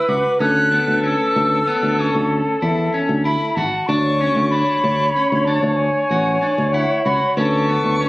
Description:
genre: progressive instrumental, progressive.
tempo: 189 BPM (eighths).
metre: 11/8.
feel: straight.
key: D lydian.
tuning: A4 = 442 Hz.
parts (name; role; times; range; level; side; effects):
concert flute; melody; 0.0-8.1 s; F#5 to F#6; -21 LUFS; equal; none.
mellow flugelhorn; second line; 0.0-8.1 s; A4 to C#5; -21 LUFS; left 1 dB; none.
electric guitar at the edge of break-up; arpeggios; 0.0-8.1 s; B3 to F#4; -23 LUFS; equal; warbly pitch drift.
fingered electric bass; bass; 0.1-8.1 s; G#1 to E2; -21 LUFS; equal; none.
tonewheel organ; accompaniment; 0.7-8.1 s; D3 to C#5; -27 LUFS; equal; slow rotary speaker.
room: light reverb.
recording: recorded on a phone in the room, club reverb, compression.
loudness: -15 LUFS.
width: side -20 dB against mid.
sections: 0.0-8.1 A section.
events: none.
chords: 0.4 A/D; 3.9 Dmaj7; 7.4 A/D.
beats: 0.07 | 0.39 0.71 1.03 1.34 1.66 1.98 2.30 2.61 2.93 3.25 3.57 | 3.88 4.20 4.52 4.84 5.15 5.47 5.79 6.11 6.42 6.74 7.06 | 7.37 7.69 8.01.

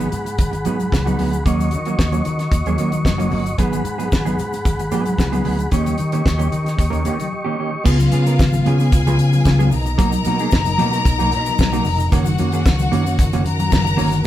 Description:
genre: disco.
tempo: 112 BPM.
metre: 4/4.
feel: straight.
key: G# dorian.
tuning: A4 = 439 Hz.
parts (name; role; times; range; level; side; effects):
mellow electric guitar; accompaniment; 0.0-14.3 s; D#3 to A#4; -23 LUFS; right 4 dB; none.
mellow tonewheel organ; sustained chords; 0.0-14.3 s; B2 to C#6; -22 LUFS; left 1 dB; chorus vibrato.
fingered electric bass; bass; 0.0-14.2 s; E#1 to D#3; -22 LUFS; equal; none.
tube shaker; percussion; 0.0-14.3 s; none; -39 LUFS; left 6 dB; none.
damped 70s drum kit; drums; 0.1-14.2 s; crash cymbal, hi-hat, kick drum, snare drum; -19 LUFS; equal; none.
congas; percussion; 0.1-14.1 s; none; -28 LUFS; left 6 dB; none.
clear studio string section; second line; 7.8-14.2 s; E#4 to A#5; -23 LUFS; left 4 dB; none.
room: wet studio reverb, RT60 0.8 s.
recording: band playing live in one room.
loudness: -15 LUFS.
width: side -13 dB against mid.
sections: 0.0-7.9 A section; 7.9-14.3 B section.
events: break 7.3-7.9.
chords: 0.0 G#m7; 1.5 D#m7; 3.6 G#m7; 5.7 D#7; 7.9 C#7; 9.7 Bmaj7; 12.1 F#6.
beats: 0.39 0.92 | 1.45 1.99 2.52 3.05 | 3.59 4.12 4.65 5.19 | 5.72 6.25 6.79 7.32 | 7.86 8.39 8.92 9.46 | 9.99 10.52 11.05 11.59 | 12.12 12.66 13.19 13.72 | 14.26.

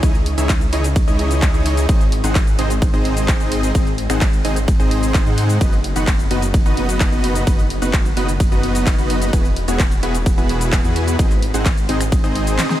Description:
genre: EDM, festival progressive house.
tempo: 129 BPM.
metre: 4/4.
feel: straight.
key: unclear.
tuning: A4 = 440 Hz.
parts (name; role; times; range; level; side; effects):
dense compressed supersaw; riff; 0.0-12.8 s; B3 to F#5; -21 LUFS; equal; sidechain pumping, tape echo.
wide detuned saw bass; bass; 0.0-12.6 s; E1 to G#2; -21 LUFS; equal; chorus, sidechain pumping.
big-room dance drum kit; drums; 0.0-12.8 s; finger snaps, handclaps, hi-hat, ride cymbal, shaker, snare drum; -26 LUFS; equal; overdrive.
electronic kick drum; drums; 0.0-12.2 s; none; -16 LUFS; equal; overdrive.
room: light reverb, digital ambience.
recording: none.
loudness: -14 LUFS.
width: side -13 dB against mid.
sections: 0.0-12.8 A section.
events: drum fill 12.6.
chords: 0.0 C#madd9; 1.9 G#; 5.6 B/F#; 9.3 Eadd9; 11.2 G#.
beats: | 0.03 0.49 0.96 1.42 | 1.89 2.35 2.82 3.29 | 3.75 4.21 4.68 5.14 | 5.61 6.08 6.54 7.01 | 7.47 7.94 8.40 8.87 | 9.33 9.80 10.26 10.73 | 11.19 11.66 12.12 12.59.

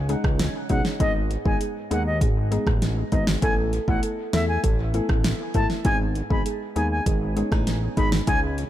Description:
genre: dancehall.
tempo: 99 BPM.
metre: 4/4.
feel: straight.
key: unclear.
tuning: A4 = 441 Hz.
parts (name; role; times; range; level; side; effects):
flamenco guitar; arpeggios; 0.0-8.7 s; G#2 to A4; -33 LUFS; right 6 dB; dub echo.
fat analog bass; bass; 0.0-8.6 s; G#1 to E2; -25 LUFS; equal; none.
hollow square pluck; accompaniment; 0.1-8.5 s; G#3 to A4; -29 LUFS; left 2 dB; chorus, dub echo.
deep house drum kit; drums; 0.1-8.7 s; hi-hat, kick drum, rim click, snare drum; -24 LUFS; equal; none.
bright reedy silver concert flute; melody; 0.7-8.4 s; D#5 to B5; -30 LUFS; left 2 dB; dub echo.
room: little or no reverb.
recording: echo-heavy mix.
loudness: -21 LUFS.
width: side -12 dB against mid.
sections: 0.0-8.7 A section.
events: none.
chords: 0.0 C#sus2; 1.0 G#m; 3.4 Asus2; 5.9 G#m.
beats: 0.40 | 1.00 1.61 2.21 2.82 | 3.43 4.03 4.64 5.25 | 5.85 6.46 7.06 7.67 | 8.28.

